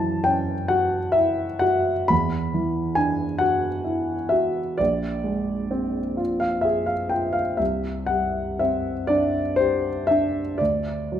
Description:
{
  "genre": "classical, impressionist solo piano",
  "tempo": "39-47 BPM (dotted quarters)",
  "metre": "6/8",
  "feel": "rubato",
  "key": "unclear",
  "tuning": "A4 = 441 Hz",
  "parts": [
    { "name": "warm concert grand piano", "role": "solo", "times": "0.0-11.2 s", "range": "Bb1 to B5", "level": "-21 LUFS", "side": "equal", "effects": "none" }
  ],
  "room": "moderate recital hall reverb, RT60 1.5 s",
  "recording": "minimal, uncompressed stereo recording",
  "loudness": "-21 LUFS",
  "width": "side -10 dB against mid",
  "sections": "0.0-11.2 A section",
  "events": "none",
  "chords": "0.0 F#5; 2.1 Esus2; 4.8 Bb9; 7.6 Csus2; 10.6 D"
}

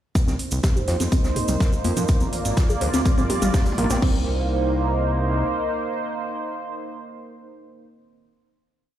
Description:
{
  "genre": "melodic techno",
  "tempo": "124 BPM",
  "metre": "4/4",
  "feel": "straight",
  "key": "C minor",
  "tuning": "A4 = 440 Hz",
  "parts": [
    { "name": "sweeping resonant pad", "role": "sustained chords", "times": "0.2-7.9 s", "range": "Bb3 to D5", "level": "-26 LUFS", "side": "right 2 dB", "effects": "chorus, sidechain pumping" },
    { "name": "electronic kick drum", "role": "drums", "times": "0.2-4.1 s", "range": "none", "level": "-20 LUFS", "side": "equal", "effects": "none" },
    { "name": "house drum kit", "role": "drums", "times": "0.2-4.1 s", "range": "crash cymbal, hi-hat, toms", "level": "-30 LUFS", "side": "equal", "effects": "none" },
    { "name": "vintage drum kit", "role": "drums", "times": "0.2-4.0 s", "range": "hi-hat, snare drum", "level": "-38 LUFS", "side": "equal", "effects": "high-pass filter on hats, high-pass filter on snare, high-pass filter on room" },
    { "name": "cabasa", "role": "percussion", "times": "0.2-4.0 s", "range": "none", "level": "-34 LUFS", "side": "right 4 dB", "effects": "none" },
    { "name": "warbly dusty pluck", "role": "arpeggios", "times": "0.3-4.2 s", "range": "G3 to C5", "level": "-27 LUFS", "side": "equal", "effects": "chorus, cassette tape, sidechain pumping, ping-pong delay" },
    { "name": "fat analog bass", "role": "bass", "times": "0.3-5.4 s", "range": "Ab1 to F2", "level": "-24 LUFS", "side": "equal", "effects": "sidechain pumping" }
  ],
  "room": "light reverb, small room ambience",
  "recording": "played on a big sound system in a bare room, large studio reverb",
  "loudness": "-20 LUFS",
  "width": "side -11 dB against mid",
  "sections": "0.2-4.0 build; 4.0-7.9 final chord",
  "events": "build-up 0.2-4.0; drum fill 0.2-4.0; filter sweep on synth arpeggio sound 0.2-4.0",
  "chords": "0.2 Cm7; 2.1 Bb; 4.0 Cm7"
}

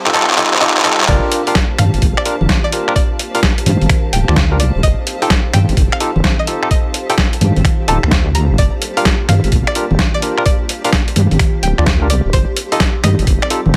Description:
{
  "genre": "UK garage, two-step garage",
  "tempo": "128 BPM",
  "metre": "4/4",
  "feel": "swing 65% on 16ths",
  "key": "G minor",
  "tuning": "A4 = 440 Hz",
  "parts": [
    { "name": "airy breathy pad", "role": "sustained chords", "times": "0.0-13.8 s", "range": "G3 to A5", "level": "-32 LUFS", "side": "equal", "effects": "chorus, sidechain pumping" },
    { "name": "granular cloud pad", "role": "texture", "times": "0.0-13.8 s", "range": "G4 to A5", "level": "-30 LUFS", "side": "equal", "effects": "built-in reverb, sidechain pumping" },
    { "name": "string-like resonator pluck", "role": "melody", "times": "0.1-13.6 s", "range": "C5 to Bb5", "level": "-25 LUFS", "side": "equal", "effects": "chorus, vintage 12-bit sampler grit, digital delay" },
    { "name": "barky tine electric piano", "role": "stabs", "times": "0.1-13.6 s", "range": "D4 to D5", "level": "-22 LUFS", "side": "equal", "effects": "overdrive" },
    { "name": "boom bap sampler-style drum kit", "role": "drums", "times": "0.1-13.8 s", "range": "congas, finger snaps, handclaps, hi-hat, snare drum", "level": "-18 LUFS", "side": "equal", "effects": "high-pass filter on snare, high-pass filter on hats, high-pass filter on perc" },
    { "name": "deep soft wobble bass", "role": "bass", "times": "1.1-13.7 s", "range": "D1 to G2", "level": "-16 LUFS", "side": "equal", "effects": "chorus" },
    { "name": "electronic kick drum", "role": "drums", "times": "1.1-13.8 s", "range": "none", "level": "-18 LUFS", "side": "equal", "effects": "none" }
  ],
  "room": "light reverb",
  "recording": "none",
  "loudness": "-14 LUFS",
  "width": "mono",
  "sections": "0.0-1.1 A section; 1.1-13.8 B section",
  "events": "build-up 0.0-1.1; drum fill 0.0-1.1; drop 1.1-13.8",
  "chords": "0.0 F9/G; 1.1 Gm7; 4.8 F9; 8.6 Gm7; 12.3 F9"
}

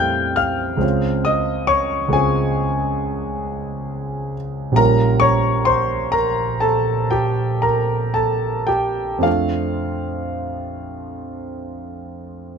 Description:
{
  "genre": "classical, impressionist solo piano",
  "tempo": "35-47 BPM (dotted quarters)",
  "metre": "9/8",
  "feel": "rubato",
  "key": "unclear",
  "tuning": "A4 = 440 Hz",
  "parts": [
    { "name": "warm concert grand piano", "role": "solo", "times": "0.0-12.6 s", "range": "Bb1 to G6", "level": "-18 LUFS", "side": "equal", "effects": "none" }
  ],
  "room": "light reverb",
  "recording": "close, detailed microphones",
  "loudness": "-17 LUFS",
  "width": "side -6 dB against mid",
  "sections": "0.0-12.6 A section",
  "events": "none",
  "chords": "0.0 Fmaj9; 0.8 Dbmaj7; 4.8 Bbm6; 9.3 F6"
}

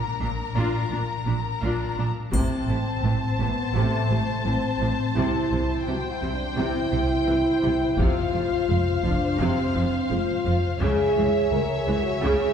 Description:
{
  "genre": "cinematic, epic orchestral film score",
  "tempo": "85 BPM",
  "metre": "4/4",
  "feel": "straight",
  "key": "unclear",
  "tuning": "A4 = 440 Hz",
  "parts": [
    { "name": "warm symphonic violin section", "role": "second line", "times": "0.0-12.5 s", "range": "Bb4 to Bb5", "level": "-33 LUFS", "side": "left 3 dB", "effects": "none" },
    { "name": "rich studio viola section", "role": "accompaniment", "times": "0.2-12.5 s", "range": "C3 to F4", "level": "-31 LUFS", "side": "right 1 dB", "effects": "none" },
    { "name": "rich symphonic cello section", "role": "bass", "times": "0.2-12.3 s", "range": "C#2 to C3", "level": "-30 LUFS", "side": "right 2 dB", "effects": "none" },
    { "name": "rich symphonic double bass section", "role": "bass", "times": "0.2-12.3 s", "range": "F1 to C#2", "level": "-28 LUFS", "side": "right 1 dB", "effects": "none" },
    { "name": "warm symphonic violin section", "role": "melody", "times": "2.3-12.5 s", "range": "E5 to A5", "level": "-31 LUFS", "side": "left 4 dB", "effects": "none" },
    { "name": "warm French horn section", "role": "sustained chords", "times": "2.3-12.5 s", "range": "A3 to Bb4", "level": "-25 LUFS", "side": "left 1 dB", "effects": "none" },
    { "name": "taiko ensemble", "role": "drums", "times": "2.3-3.7, 8.0-9.4 s", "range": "none", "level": "-29 LUFS", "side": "left 1 dB", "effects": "none" },
    { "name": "triangle", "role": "percussion", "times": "2.3-3.7 s", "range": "none", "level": "-39 LUFS", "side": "left 5 dB", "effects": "none" }
  ],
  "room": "wet concert hall reverb, RT60 2.2 s",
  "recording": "heard from further back in the room",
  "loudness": "-21 LUFS",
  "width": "side -8 dB against mid",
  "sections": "0.0-2.3 A section; 2.3-12.5 B section",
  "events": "build-up 0.0-2.3",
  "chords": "0.0 Bb; 2.3 Am; 5.2 C; 8.0 F5; 10.8 C#m"
}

